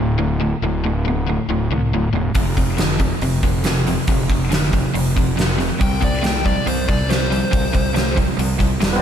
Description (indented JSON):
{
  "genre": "classic rock",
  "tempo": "139 BPM",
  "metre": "4/4",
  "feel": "straight",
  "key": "unclear",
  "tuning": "A4 = 440 Hz",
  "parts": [
    { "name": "biting overdriven guitar", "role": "riff", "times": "0.0-9.0 s", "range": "D2 to A3", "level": "-23 LUFS", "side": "left 8 dB", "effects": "none" },
    { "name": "crunchy overdriven guitar", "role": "riff", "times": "0.0-9.0 s", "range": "D2 to A3", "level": "-23 LUFS", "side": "right 8 dB", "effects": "spring reverb" },
    { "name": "fuzz fingered electric bass", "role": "bass", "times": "0.0-9.0 s", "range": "D1 to C2", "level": "-23 LUFS", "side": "equal", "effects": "overdrive" },
    { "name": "big rock drum kit", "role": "drums", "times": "2.3-8.9 s", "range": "hi-hat, kick drum, snare drum", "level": "-20 LUFS", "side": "equal", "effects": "none" },
    { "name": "fuzz lead guitar", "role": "second line", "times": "5.8-8.2 s", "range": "C5 to G5", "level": "-24 LUFS", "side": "left 2 dB", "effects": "distortion" },
    { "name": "overdriven tonewheel organ", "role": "sustained chords", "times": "8.9-9.0 s", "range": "B3 to D4", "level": "-18 LUFS", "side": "equal", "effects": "slow rotary speaker" }
  ],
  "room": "light reverb, small room ambience",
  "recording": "none",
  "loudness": "-16 LUFS",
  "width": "side -9 dB against mid",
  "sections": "0.0-9.0 A section",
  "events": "none",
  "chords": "0.0 D5; 2.4 F5; 5.8 C5",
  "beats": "0.19 | 0.62 1.05 1.49 1.92 | 2.35 2.78 3.22 3.65 | 4.08 4.51 4.94 5.37 | 5.80 6.23 6.67 7.09 | 7.53 7.95 8.38 8.81"
}